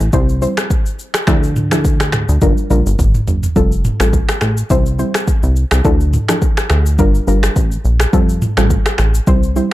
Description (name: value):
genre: afrobeats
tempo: 105 BPM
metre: 4/4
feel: swing 55% on 16ths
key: F major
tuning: A4 = 440 Hz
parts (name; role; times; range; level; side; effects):
- plucky analog bass; bass; 0.0-9.6 s; F1 to D2; -15 LUFS; equal; none
- afro-pop drum kit; drums; 0.0-9.7 s; finger snaps, kick drum, rim click, shaker, toms; -15 LUFS; equal; none
- soft round pluck; accompaniment; 0.1-9.7 s; F3 to C5; -19 LUFS; equal; chorus
room: little or no reverb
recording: dark, warm production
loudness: -12 LUFS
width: side -16 dB against mid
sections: 0.0-3.6 A section; 3.6-9.7 B section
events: drum fill 2.4-3.6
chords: 0.1 C; 1.3 Dmadd9; 2.4 Gm7; 3.6 Fadd9; 4.7 C; 5.8 Dmadd9; 7.0 Gm7; 8.1 Fadd9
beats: 0.13 0.70 | 1.27 1.85 2.42 2.99 | 3.56 4.13 4.70 5.28 | 5.85 6.42 6.99 7.56 | 8.13 8.70 9.28